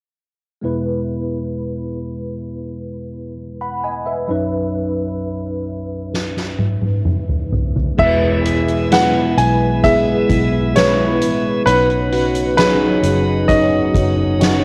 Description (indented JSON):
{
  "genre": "pop ballad",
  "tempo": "66 BPM",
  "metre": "4/4",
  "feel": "straight",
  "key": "E major",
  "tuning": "A4 = 440 Hz",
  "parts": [
    { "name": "tine electric piano", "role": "accompaniment", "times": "0.6-14.6 s", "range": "B1 to B5", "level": "-22 LUFS", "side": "equal", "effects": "ensemble chorus, cassette tape" },
    { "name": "soft-mallet drum kit", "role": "drums", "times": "6.1-14.6 s", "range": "crash cymbal, hi-hat, kick drum, snare drum, toms", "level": "-22 LUFS", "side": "equal", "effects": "cassette tape" },
    { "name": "bright concert grand piano", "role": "melody", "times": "8.0-14.6 s", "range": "B4 to G#5", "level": "-21 LUFS", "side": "equal", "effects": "cassette tape" },
    { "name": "tonewheel organ", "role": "sustained chords", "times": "8.0-14.6 s", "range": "B2 to E4", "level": "-30 LUFS", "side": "equal", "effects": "overdrive, slow rotary speaker, cassette tape" },
    { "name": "fingerpicked plugged-in steel-string acoustic guitar", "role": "arpeggios", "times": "8.0-14.6 s", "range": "E3 to C#5", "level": "-27 LUFS", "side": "equal", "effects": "none" },
    { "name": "vintage muted fingered electric bass", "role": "bass", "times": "8.0-14.6 s", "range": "E1 to B1", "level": "-24 LUFS", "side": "equal", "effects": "none" }
  ],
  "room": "little or no reverb",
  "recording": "home recording on cassette",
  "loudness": "-17 LUFS",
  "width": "mono",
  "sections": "0.6-8.0 A section; 8.0-14.6 B section",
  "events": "drum fill 6.1-8.0",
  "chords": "0.6 E; 4.3 Badd9; 8.0 E; 11.7 Badd9"
}